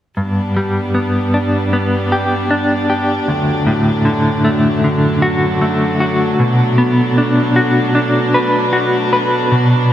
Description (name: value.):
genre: rock.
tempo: 77 BPM.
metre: 4/4.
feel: straight.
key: unclear.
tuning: A4 = 439 Hz.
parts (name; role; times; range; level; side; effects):
rich chamber string section; sustained chords; 0.2-9.9 s; F#2 to D4; -19 LUFS; right 1 dB; none.
clean electric guitar; arpeggios; 0.2-9.9 s; D2 to B4; -13 LUFS; equal; tremolo, slapback echo.
room: wet huge ambient reverb, RT60 7.5 s.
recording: none.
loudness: -12 LUFS.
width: side -11 dB against mid.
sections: 0.2-9.9 A section.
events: none.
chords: 0.2 G; 3.3 D; 6.4 Bm7.